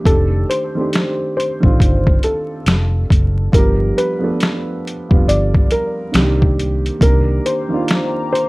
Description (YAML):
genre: lo-fi hip hop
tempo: 69 BPM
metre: 4/4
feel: swing 63% on 16ths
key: C dorian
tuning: A4 = 440 Hz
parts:
  - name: dark upright piano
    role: accompaniment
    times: 0.0-8.5 s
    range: D3 to A4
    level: -21 LUFS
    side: right 2 dB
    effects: cassette tape, low-pass filter
  - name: felt-muted upright piano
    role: melody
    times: 0.1-8.5 s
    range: A4 to D5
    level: -21 LUFS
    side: left 1 dB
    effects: low-pass filter
  - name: vintage muted fingered electric bass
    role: bass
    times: 0.1-7.4 s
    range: F1 to C2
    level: -17 LUFS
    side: equal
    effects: none
  - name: trip hop sampler-style drum kit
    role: drums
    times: 0.1-8.5 s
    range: finger snaps, hi-hat, kick drum, snare drum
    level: -15 LUFS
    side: equal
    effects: overdrive
  - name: dark analog pad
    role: sustained chords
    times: 7.0-8.5 s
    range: C5 to D6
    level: -28 LUFS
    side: left 2 dB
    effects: chorus, low-pass filter
room: light reverb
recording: vinyl crackle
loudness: -13 LUFS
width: side -22 dB against mid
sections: 0.0-7.0 A section; 7.0-8.5 A section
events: none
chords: 0.1 F13; 3.5 G9; 6.1 Cm9